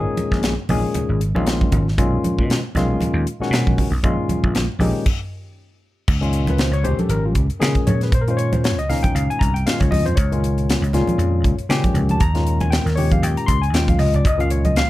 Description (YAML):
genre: electric jazz fusion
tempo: 117 BPM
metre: 4/4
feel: swing 56% on 16ths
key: Bb dorian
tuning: A4 = 440 Hz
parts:
  - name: barky tine electric piano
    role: accompaniment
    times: 0.0-14.9 s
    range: Bb2 to C6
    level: -22 LUFS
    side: left 2 dB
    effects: lush chorus
  - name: vintage slap bass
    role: bass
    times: 0.0-14.8 s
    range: Ab1 to Db3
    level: -20 LUFS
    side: equal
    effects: none
  - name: crisp fusion drum kit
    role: drums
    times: 0.2-14.9 s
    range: crash cymbal, hi-hat, kick drum, snare drum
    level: -22 LUFS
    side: equal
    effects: none
  - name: congas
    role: percussion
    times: 0.2-14.8 s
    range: none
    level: -24 LUFS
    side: right 2 dB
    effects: none
room: light reverb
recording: none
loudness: -16 LUFS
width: side -16 dB against mid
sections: 0.0-6.1 A section; 6.1-14.9 B section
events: stop 5.1-6.1; drum fill 13.9-14.2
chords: 0.0 Bbm7; 2.0 Bmaj9; 4.0 Bbm7; 6.1 Dbmaj9; 10.2 Bbm7/Db; 14.2 Dbadd9